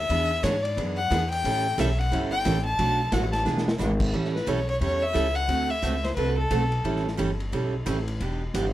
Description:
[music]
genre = country, western swing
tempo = 178 BPM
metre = 4/4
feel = swing 62% on 8ths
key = A mixolydian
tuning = A4 = 438 Hz
[part]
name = clear fiddle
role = melody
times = 0.0-7.0 s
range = A4 to A5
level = -27 LUFS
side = left 2 dB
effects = none
[part]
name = upright bass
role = bass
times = 0.0-8.7 s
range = E1 to G#2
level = -28 LUFS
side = equal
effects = none
[part]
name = picked steel-string acoustic guitar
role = accompaniment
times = 0.1-8.7 s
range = B2 to A4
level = -29 LUFS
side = right 4 dB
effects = none
[part]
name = vintage drum kit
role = drums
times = 0.1-8.6 s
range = crash cymbal, hi-hat, kick drum, ride cymbal, snare drum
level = -33 LUFS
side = equal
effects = none
[sound]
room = moderate studio reverb, RT60 0.7 s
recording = none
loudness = -23 LUFS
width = side -14 dB against mid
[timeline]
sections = 0.0-4.1 A section; 4.1-8.7 B section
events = fiddle solo 0.0-4.1; drum fill 3.5-3.8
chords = 0.1 E9; 1.4 A9; 2.8 Bm7; 3.5 E7; 4.1 A9; 5.5 D9; 6.8 A9; 8.2 Em7

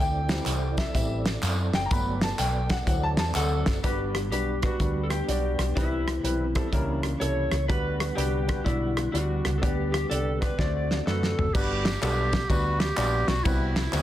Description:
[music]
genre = uptempo gospel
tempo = 124 BPM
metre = 4/4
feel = swing 64% on 8ths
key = G major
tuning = A4 = 440 Hz
[part]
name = clear baby grand piano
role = accompaniment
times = 0.0-14.0 s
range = G2 to B5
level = -31 LUFS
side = left 1 dB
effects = none
[part]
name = mellow tonewheel organ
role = sustained chords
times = 0.0-11.5 s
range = D3 to F#5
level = -35 LUFS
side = right 3 dB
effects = fast rotary speaker, chorus vibrato
[part]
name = hollow-body short-scale fingered electric bass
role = bass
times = 0.0-14.0 s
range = F#1 to F#2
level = -29 LUFS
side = equal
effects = none
[part]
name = warm soul drum kit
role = drums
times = 0.3-14.0 s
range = crash cymbal, hi-hat, kick drum, ride cymbal, rim click, snare drum, toms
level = -28 LUFS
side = equal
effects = none
[part]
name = tambourine and handclaps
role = percussion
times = 0.3-3.7, 11.6-14.0 s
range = none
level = -36 LUFS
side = right 1 dB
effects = none
[part]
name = electric slide guitar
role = melody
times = 3.4-11.5 s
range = E4 to D5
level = -31 LUFS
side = left 2 dB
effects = none
[part]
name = bright clarinet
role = melody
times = 11.1-14.0 s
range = E4 to A4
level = -30 LUFS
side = right 1 dB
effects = none
[sound]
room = light reverb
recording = dense, heavily limited modern master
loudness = -24 LUFS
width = side -12 dB against mid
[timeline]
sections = 0.0-3.8 A section; 3.8-11.5 B section; 11.5-14.0 C section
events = grand piano solo 0.0-3.8; drum fill 10.6-11.5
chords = 0.0 D9sus4; 1.9 Gmaj7; 2.9 D7; 3.8 Gmaj7; 5.8 Cmaj7; 6.7 C#dim7; 7.7 Gmaj7; 9.6 G/D; 10.6 D7; 11.5 Gmaj7; 13.5 Cmaj7

